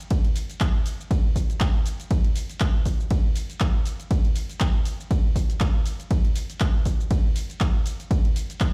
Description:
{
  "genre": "house",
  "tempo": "120 BPM",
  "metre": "4/4",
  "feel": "swing 56% on 16ths",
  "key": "none",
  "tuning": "none",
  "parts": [
    { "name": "punchy analog drum machine", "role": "drums", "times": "0.0-8.7 s", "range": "handclaps, hi-hat, ride cymbal, shaker", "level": "-37 LUFS", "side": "equal", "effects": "sidechain pumping on hats, sidechain pumping on perc, sidechain pumping on cymbals" },
    { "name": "electronic kick drum", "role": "drums", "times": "0.1-8.7 s", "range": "none", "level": "-24 LUFS", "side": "equal", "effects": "none" }
  ],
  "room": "little or no reverb",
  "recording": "played on a big sound system in a bare room, stone room reverb",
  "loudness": "-24 LUFS",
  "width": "mono",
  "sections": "0.0-8.7 A section",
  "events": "none",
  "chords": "none",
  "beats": "| 0.11 0.61 1.11 1.61 | 2.11 2.61 3.11 3.61 | 4.11 4.61 5.11 5.61 | 6.11 6.61 7.11 7.61 | 8.11 8.61"
}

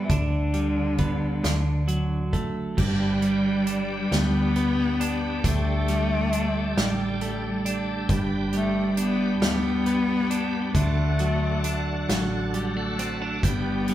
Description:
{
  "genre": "six-eight pop ballad",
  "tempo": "45 BPM (dotted quarters)",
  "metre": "6/8",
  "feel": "straight",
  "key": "G major",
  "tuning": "A4 = 440 Hz",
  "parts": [
    { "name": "clear cello", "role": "melody", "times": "0.0-13.9 s", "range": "D3 to B3", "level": "-28 LUFS", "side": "left 4 dB", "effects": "none" },
    { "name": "twelve-string electric guitar", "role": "accompaniment", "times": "0.0-13.9 s", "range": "G2 to D4", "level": "-27 LUFS", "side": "right 3 dB", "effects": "none" },
    { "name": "hollow-body short-scale fingered electric bass", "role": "bass", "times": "0.0-13.9 s", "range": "G1 to D2", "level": "-28 LUFS", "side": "equal", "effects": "none" },
    { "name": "natural country drum kit", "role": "drums", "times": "0.1-13.9 s", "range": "crash cymbal, hi-hat, kick drum, snare drum", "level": "-28 LUFS", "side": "equal", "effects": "none" },
    { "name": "bright tonewheel organ", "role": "sustained chords", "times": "2.8-13.9 s", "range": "D4 to G5", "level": "-32 LUFS", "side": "equal", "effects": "chorus vibrato, slow rotary speaker" }
  ],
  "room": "wet large studio reverb, RT60 1.4 s",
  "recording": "band playing live in one room",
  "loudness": "-22 LUFS",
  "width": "side -12 dB against mid",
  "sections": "0.0-2.8 A section; 2.8-13.9 B section",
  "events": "none",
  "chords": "0.1 G/D; 1.4 D; 2.8 G; 5.4 Dsus4; 8.1 G; 10.8 D; 13.4 G",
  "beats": "| 0.10 1.44 | 2.78 4.12 | 5.45 6.77 | 8.09 9.42 | 10.75 12.09 | 13.43"
}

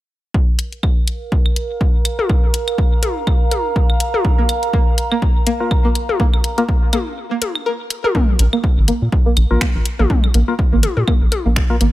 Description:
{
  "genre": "minimal techno",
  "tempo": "123 BPM",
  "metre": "4/4",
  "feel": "swing 56% on 16ths",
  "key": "unclear",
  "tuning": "A4 = 444 Hz",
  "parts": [
    { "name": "electronic kick drum", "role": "drums", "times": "0.3-11.7 s", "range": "none", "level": "-16 LUFS", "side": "equal", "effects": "none" },
    { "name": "warbly tape-like pad", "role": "texture", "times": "1.2-8.1 s", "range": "Bb4 to Bb5", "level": "-24 LUFS", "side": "right 3 dB", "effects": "chorus, built-in reverb, sidechain pumping" },
    { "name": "garage drum kit", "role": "drums", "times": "0.6-11.9 s", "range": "finger snaps, hi-hat", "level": "-23 LUFS", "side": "left 1 dB", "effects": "none" },
    { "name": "electronic claves and toms", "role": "percussion", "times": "0.8-11.4 s", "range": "none", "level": "-23 LUFS", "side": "left 3 dB", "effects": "dub echo" },
    { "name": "string-like resonator pluck", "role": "riff", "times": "4.4-11.8 s", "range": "Bb3 to Bb4", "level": "-22 LUFS", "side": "right 1 dB", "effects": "chorus, sidechain pumping, digital delay" },
    { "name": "percussive organ stab", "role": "stabs", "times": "5.6-11.8 s", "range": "Bb3 to Bb4", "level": "-24 LUFS", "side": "left 3 dB", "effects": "chorus, dub echo" },
    { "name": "rubbery square bass", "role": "bass", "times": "8.4-11.9 s", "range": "Ab1 to Bb2", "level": "-15 LUFS", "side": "equal", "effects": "sidechain pumping" }
  ],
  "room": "little or no reverb",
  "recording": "none",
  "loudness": "-14 LUFS",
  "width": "side -16 dB against mid",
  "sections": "0.3-8.1 A section; 8.1-11.9 B section",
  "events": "break 7.2-8.1; filter sweep on synth pluck 8.1-11.9",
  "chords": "0.3 Bb5",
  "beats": "| 0.34 0.83 1.32 1.81 | 2.29 2.78 3.27 3.76 | 4.25 4.73 5.22 5.71 | 6.20 6.69 7.17 7.66 | 8.15 8.64 9.12 9.61 | 10.10 10.59 11.08 11.56"
}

